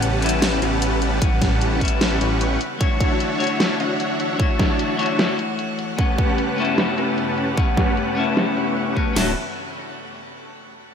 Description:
future bass; 151 BPM; 4/4; swing 55% on 16ths, half-time; D major; A4 = 439 Hz
clean electric guitar; accompaniment; 0.0-9.3 s; G3 to F#5; -24 LUFS; left 5 dB; spring reverb, sidechain pumping, tape echo
airy breathy pad; sustained chords; 0.0-9.3 s; G2 to F#5; -31 LUFS; left 1 dB; chorus, phaser, sidechain pumping
dense compressed supersaw; riff; 0.0-9.3 s; C#4 to C#6; -24 LUFS; right 1 dB; sidechain pumping, low-pass filter, tape echo
wide detuned saw bass; bass; 0.0-2.6, 9.2-9.3 s; D1 to A1; -23 LUFS; right 1 dB; chorus, sidechain pumping
dubstep drum kit; drums; 0.0-9.1 s; hi-hat, snare drum; -25 LUFS; equal; low-pass filter on snare, low-pass filter on hats, low-pass filter on toms, low-pass filter on cymbals, low-pass filter on room
dubstep drum kit; drums; 1.2-9.3 s; crash cymbal, kick drum, snare drum; -21 LUFS; equal
light reverb; -18 LUFS; side -7 dB against mid
0.0-9.2 A section; 9.2-10.8 B section
filter sweep on drum 0.0-9.2
0.0 A13; 2.6 Dmaj9; 6.0 Gmaj9#11; 9.2 Dmaj9
0.03 0.42 0.82 | 1.22 1.61 2.01 2.41 | 2.81 3.20 3.60 4.00 | 4.40 4.79 5.19 5.59 | 5.99 6.38 6.78 7.18 | 7.58 7.97 8.37 8.77 | 9.16

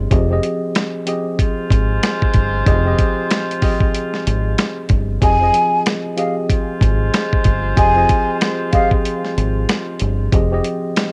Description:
hip hop, boom-bap hip-hop; 94 BPM; 4/4; swing 60% on 16ths; F minor; A4 = 440 Hz
mellow tine electric piano; accompaniment; 0.0-11.1 s; F3 to Eb5; -24 LUFS; equal; cassette tape, high-pass filter, low-pass filter
deep dub fingered electric bass; bass; 0.0-10.6 s; F1 to Ab1; -21 LUFS; equal
dusty soul sampler-style drum kit; drums; 0.1-11.1 s; hi-hat, kick drum, snare drum; -19 LUFS; equal; cassette tape
clear horn section; stabs; 1.4-10.0 s; Ab3 to C5; -27 LUFS; equal; high-pass filter, low-pass filter, cassette tape, tape echo
breathy concert flute; melody; 5.2-8.9 s; F5 to Ab5; -19 LUFS; equal; high-pass filter, low-pass filter, cassette tape
little or no reverb; home recording on cassette; -17 LUFS; mono
0.0-11.1 A section
0.0 Fm7
| 0.11 0.75 1.39 2.03 | 2.67 3.30 3.94 4.58 | 5.22 5.86 6.50 7.13 | 7.77 8.41 9.05 9.69 | 10.32 10.96

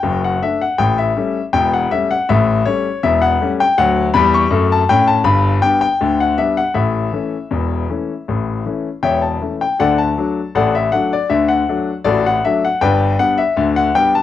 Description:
ragtime piano; 80 BPM; 2/4; straight; D major; A4 = 440 Hz
clear grand piano; solo; 0.0-14.2 s; E1 to C#6; -14 LUFS; left 3 dB
light reverb, small room ambience; home recording on cassette; -14 LUFS; side -12 dB against mid
0.0-9.8 A section; 9.8-14.2 B section
0.0 D/F#; 0.8 A7; 3.8 D; 5.3 G; 6.8 A; 9.8 D; 12.8 G
0.04 | 0.79 1.53 | 2.28 3.03 | 3.77 4.52 | 5.26 6.01 | 6.77 7.53 | 8.29 9.05 | 9.81 10.56 | 11.31 12.06 | 12.81 13.56

